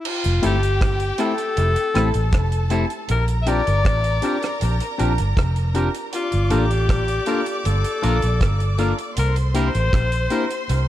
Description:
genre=lovers rock reggae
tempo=79 BPM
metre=4/4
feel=straight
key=F major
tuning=A4 = 437 Hz
part: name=breathy alto saxophone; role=melody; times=0.0-10.9 s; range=E4 to E5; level=-25 LUFS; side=left 3 dB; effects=tape echo
part: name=deep reggae drum kit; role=drums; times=0.0-10.9 s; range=crash cymbal, hi-hat, kick drum, rim click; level=-24 LUFS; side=right 1 dB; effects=dub echo
part: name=rich studio violin section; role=second line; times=0.1-10.9 s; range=G4 to D6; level=-31 LUFS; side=equal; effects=none
part: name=vintage muted fingered electric bass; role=bass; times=0.3-10.9 s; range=F1 to C2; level=-20 LUFS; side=equal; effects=none
part: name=mellow tine electric piano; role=accompaniment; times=0.4-10.4 s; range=A3 to A4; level=-27 LUFS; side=left 4 dB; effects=dub echo
part: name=twangy electric guitar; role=stabs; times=0.4-10.5 s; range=C4 to Bb4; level=-30 LUFS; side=right 4 dB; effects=dub echo
room=light reverb, small room reverb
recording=dark, warm production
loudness=-18 LUFS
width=side -13 dB against mid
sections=0.1-10.9 A section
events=none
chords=0.1 Fmaj7; 3.1 Bb6; 6.1 Gm7; 9.2 C7

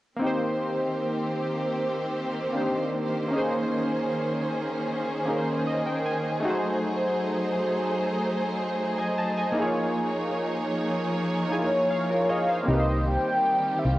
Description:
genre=contemporary R&B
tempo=77 BPM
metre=4/4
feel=straight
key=unclear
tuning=A4 = 440 Hz
part: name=warm analog keys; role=accompaniment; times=0.2-14.0 s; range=A3 to A5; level=-28 LUFS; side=equal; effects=chorus, cassette tape
part: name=rich studio string section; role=sustained chords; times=0.2-14.0 s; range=Eb3 to Db5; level=-28 LUFS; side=equal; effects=cassette tape
part: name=mellow horn-like synth lead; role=melody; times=11.5-14.0 s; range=Db5 to G5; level=-25 LUFS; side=equal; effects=chorus, cassette tape
part: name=solid FM bass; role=bass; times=12.7-14.0 s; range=C2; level=-24 LUFS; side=equal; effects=none
room=light reverb, digital ambience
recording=home recording on cassette, nothing above 10.8 kHz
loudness=-24 LUFS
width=side -16 dB against mid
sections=0.2-12.7 A section; 12.7-14.0 B section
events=synth keys fill 5.3-6.4, 11.1-12.7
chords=0.2 Cm7; 3.3 Bbm11; 6.4 Ab7b9; 9.6 Db69; 12.7 Cm7

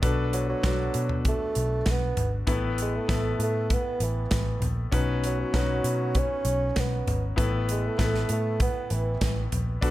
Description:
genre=piano-driven pop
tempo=98 BPM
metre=4/4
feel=straight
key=A major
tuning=A4 = 439 Hz
part: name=clear grand piano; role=accompaniment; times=0.0-9.9 s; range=A2 to B4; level=-31 LUFS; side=left 4 dB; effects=none
part: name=vintage muted picked electric bass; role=bass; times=0.0-9.9 s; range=G#1 to B2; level=-28 LUFS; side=equal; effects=none
part: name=modern studio drum kit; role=drums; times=0.0-9.9 s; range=hi-hat, kick drum, snare drum, toms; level=-28 LUFS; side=equal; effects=none
part: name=mellow bassoon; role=melody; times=0.3-9.5 s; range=E3 to C#4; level=-31 LUFS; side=right 3 dB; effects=none
room=studio reverb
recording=none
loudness=-24 LUFS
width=side -15 dB against mid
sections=0.0-9.9 A section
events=none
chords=0.0 Bm7; 2.5 Asus2; 4.9 Badd9; 7.4 Asus2

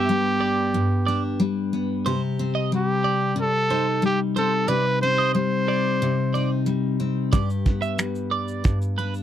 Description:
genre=acoustic pop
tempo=91 BPM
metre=4/4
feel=straight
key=unclear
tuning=A4 = 440 Hz
part: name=bright trumpet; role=melody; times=0.0-6.6 s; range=G4 to C5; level=-23 LUFS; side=right 1 dB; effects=none
part: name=picked steel-string acoustic guitar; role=accompaniment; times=0.0-9.2 s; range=G2 to G4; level=-23 LUFS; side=left 2 dB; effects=none
part: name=twelve-string electric guitar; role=arpeggios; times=0.0-9.1 s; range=B4 to E5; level=-28 LUFS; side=right 8 dB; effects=phaser
part: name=cloth-damped thuddy drum kit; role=drums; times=7.3-9.2 s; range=finger snaps, kick drum, shaker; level=-20 LUFS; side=right 1 dB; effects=none
room=little or no reverb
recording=dry, close 1970s-style studio recording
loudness=-20 LUFS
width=side -10 dB against mid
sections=0.0-9.2 A section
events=none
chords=0.0 G; 2.1 Cm; 7.3 G

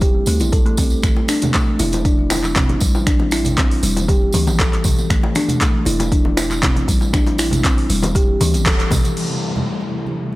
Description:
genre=afro house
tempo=118 BPM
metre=4/4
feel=straight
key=A minor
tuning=A4 = 442 Hz
part: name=kalimba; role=arpeggios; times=0.0-9.0 s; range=E3 to A4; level=-20 LUFS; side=left 1 dB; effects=sidechain pumping, analog delay
part: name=warm 808-style bass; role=bass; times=0.0-9.1 s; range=E1 to D2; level=-22 LUFS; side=equal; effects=sidechain pumping
part: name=afro-pop drum kit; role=drums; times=0.0-9.3 s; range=crash cymbal, finger snaps, handclaps, hi-hat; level=-23 LUFS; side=equal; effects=overdrive
part: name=electronic kick drum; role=drums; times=0.0-9.0 s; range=none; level=-17 LUFS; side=equal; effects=overdrive
part: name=tambourine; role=percussion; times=0.0-9.1 s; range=none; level=-29 LUFS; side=right 3 dB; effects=none
part: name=bongos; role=percussion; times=0.4-9.0 s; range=none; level=-27 LUFS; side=left 2 dB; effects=none
part: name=congas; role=percussion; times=1.0-10.4 s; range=none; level=-26 LUFS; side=right 2 dB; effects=none
part: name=warm analog pad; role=sustained chords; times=9.2-10.4 s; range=C3 to E4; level=-25 LUFS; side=left 1 dB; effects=chorus, tremolo, vintage 12-bit sampler grit, sidechain pumping
part: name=downlifter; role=sound effects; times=9.2-10.4 s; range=none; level=-29 LUFS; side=equal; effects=none
room=small room ambience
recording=dry, gritty hardware recording, transformer saturation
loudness=-14 LUFS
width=side -18 dB against mid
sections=0.0-9.2 A section; 9.2-10.4 B section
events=band accent 8.7; filter sweep on analog synth pad 9.2-10.4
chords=0.0 A5; 9.2 Am7

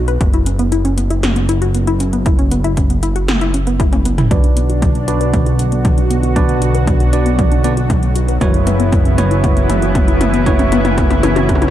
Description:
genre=synthwave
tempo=117 BPM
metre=4/4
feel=straight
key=B minor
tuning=A4 = 440 Hz
part: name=warbly dusty pluck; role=arpeggios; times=0.0-11.7 s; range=B3 to B4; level=-21 LUFS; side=left 2 dB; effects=chorus, ping-pong delay
part: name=fat analog bass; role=bass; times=0.0-11.7 s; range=F#1 to B1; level=-16 LUFS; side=equal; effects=none
part: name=80s electronic pad drums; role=drums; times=0.1-11.7 s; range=hi-hat, snare drum, toms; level=-21 LUFS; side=left 1 dB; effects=gated reverb on snare and toms, overdrive
part: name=electronic kick drum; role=drums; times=0.2-11.6 s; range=none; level=-16 LUFS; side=equal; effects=overdrive
part: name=lush unison pad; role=sustained chords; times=4.3-11.7 s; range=B2 to F#4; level=-20 LUFS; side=equal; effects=chorus, sidechain pumping
part: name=tine electric piano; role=stabs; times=4.3-11.7 s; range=D4 to D5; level=-21 LUFS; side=right 4 dB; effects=low-pass filter, ping-pong delay
room=light reverb, digital ambience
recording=dark, warm production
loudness=-12 LUFS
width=side -12 dB against mid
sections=0.0-4.3 A section; 4.3-11.7 B section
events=drum fill 3.8-4.3, 4.3-11.7; filter sweep on synth arpeggio sound 4.3-11.7; filter sweep on tine electric piano 4.3-11.7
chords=0.2 F#7sus4; 4.3 Bm; 8.4 F#7sus4

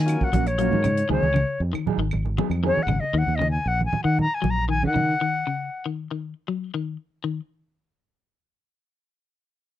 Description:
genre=afrobeat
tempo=117 BPM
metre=4/4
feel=straight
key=unclear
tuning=A4 = 440 Hz
part: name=silver concert flute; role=melody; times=0.0-5.9 s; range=Db5 to Bb5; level=-25 LUFS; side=left 2 dB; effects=none
part: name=electric guitar at the edge of break-up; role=arpeggios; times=0.0-7.4 s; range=Db3 to Gb3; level=-28 LUFS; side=left 6 dB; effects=none
part: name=fingered electric bass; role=bass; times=0.0-5.1 s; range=Ab1 to Eb3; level=-24 LUFS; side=equal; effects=none
part: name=overdriven combo organ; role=accompaniment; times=0.1-0.8 s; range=Gb3 to F4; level=-33 LUFS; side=left 4 dB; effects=spring reverb
part: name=warm soul drum kit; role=drums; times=0.1-1.1 s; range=hi-hat, kick drum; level=-27 LUFS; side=equal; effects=none
part: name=claves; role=percussion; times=0.1-3.0 s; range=none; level=-41 LUFS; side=right 5 dB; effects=none
part: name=mellow electric guitar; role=stabs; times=0.2-3.1 s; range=Gb3 to Ab4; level=-30 LUFS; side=right 12 dB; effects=none
part: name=congas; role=percussion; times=0.2-5.1 s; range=none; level=-28 LUFS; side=right 4 dB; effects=none
room=light reverb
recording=dry, close 1970s-style studio recording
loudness=-21 LUFS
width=side -12 dB against mid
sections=0.0-7.2 A section; 7.2-9.8 B section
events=flute solo 0.0-7.2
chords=0.0 Ebm7; 1.1 Db9sus4; 3.2 Ebm7; 5.2 Dbsus4 (rootless); 7.2 N.C.

